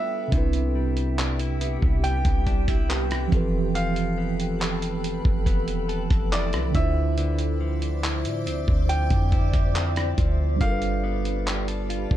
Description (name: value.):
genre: contemporary R&B.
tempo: 70 BPM.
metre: 4/4.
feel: straight.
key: unclear.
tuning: A4 = 438 Hz.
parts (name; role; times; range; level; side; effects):
bright grand piano; melody; 0.0-12.2 s; D5 to G5; -33 LUFS; right 2 dB; digital delay.
mellow tine electric piano; accompaniment; 0.0-12.2 s; C3 to C5; -29 LUFS; right 4 dB; medium stereo tremolo.
granular cloud pad; sustained chords; 0.0-12.2 s; G4 to D6; -33 LUFS; left 1 dB; built-in reverb.
direct-recorded clean electric guitar; arpeggios; 0.0-12.2 s; C3 to A4; -35 LUFS; left 9 dB; wide subtle chorus.
clean 808-style bass; bass; 0.3-12.2 s; E1 to A2; -26 LUFS; equal; none.
dusty soul sampler-style drum kit; drums; 0.3-12.2 s; handclaps, hi-hat, kick drum, rim click; -25 LUFS; equal; none.
room: little or no reverb.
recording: dark, warm production.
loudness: -21 LUFS.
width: side -12 dB against mid.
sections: 0.3-12.2 A section.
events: none.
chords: 0.3 Cmaj7; 3.3 Fmaj9#11; 6.7 Dm9; 10.6 G9.